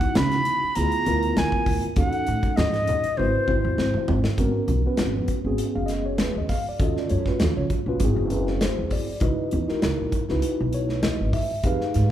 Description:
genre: electric jazz fusion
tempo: 99 BPM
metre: 4/4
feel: swing 53% on 16ths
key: unclear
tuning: A4 = 440 Hz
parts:
  - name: reedy concert flute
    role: melody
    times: 0.0-4.1 s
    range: B#4 to B5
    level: -25 LUFS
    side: equal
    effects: none
  - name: mellow tine electric piano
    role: accompaniment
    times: 0.0-12.1 s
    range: B3 to E#5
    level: -26 LUFS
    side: equal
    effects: medium stereo tremolo
  - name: modern studio drum kit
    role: drums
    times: 0.0-12.1 s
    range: hi-hat, kick drum, snare drum, toms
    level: -27 LUFS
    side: equal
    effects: none
  - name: upright bass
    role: bass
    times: 0.2-12.1 s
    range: F#1 to D3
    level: -26 LUFS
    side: equal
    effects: none
  - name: congas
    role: percussion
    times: 0.2-12.0 s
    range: none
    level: -31 LUFS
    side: right 1 dB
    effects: none
room: moderate large studio reverb, RT60 1.2 s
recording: band playing live in one room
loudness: -21 LUFS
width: side -11 dB against mid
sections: 0.0-4.4 A section; 4.4-12.1 B section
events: drum fill 3.2-4.4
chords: 0.0 C#m11; 0.8 Ddim7; 2.0 D#m7b5; 3.2 G#7alt; 4.4 G#m11; 6.8 D#m7b5; 8.0 G#aug7; 9.2 C#m11

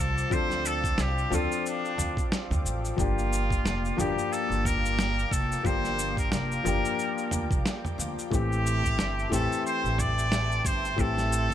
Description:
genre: sunset chillout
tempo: 90 BPM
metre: 4/4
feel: swing 57% on 16ths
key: G dorian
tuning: A4 = 441 Hz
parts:
  - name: trumpet with straight mute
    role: melody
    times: 0.0-11.5 s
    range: D4 to D5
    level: -30 LUFS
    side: equal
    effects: ping-pong delay
  - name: clear grand piano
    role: accompaniment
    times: 0.0-11.5 s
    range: E3 to A5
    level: -32 LUFS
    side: moving between left 6 dB and right 2 dB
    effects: auto-pan, ping-pong delay
  - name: airy breathy pad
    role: sustained chords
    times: 0.0-11.5 s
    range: Bb3 to D6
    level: -37 LUFS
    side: left 2 dB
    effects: chorus
  - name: upright bass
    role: bass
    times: 0.0-11.5 s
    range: F1 to D2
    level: -30 LUFS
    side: right 1 dB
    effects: none
  - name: dusty soul sampler-style drum kit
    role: drums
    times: 0.2-11.5 s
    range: cabasa, snare drum, toms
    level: -33 LUFS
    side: right 1 dB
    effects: small room reverb
  - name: electronic kick drum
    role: drums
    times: 0.3-11.5 s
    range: none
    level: -30 LUFS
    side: right 1 dB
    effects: small room reverb
room: little or no reverb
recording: none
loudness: -25 LUFS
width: side -10 dB against mid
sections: 0.0-11.5 A section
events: none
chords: 0.0 Dm7; 3.0 Gm7; 8.3 Am7

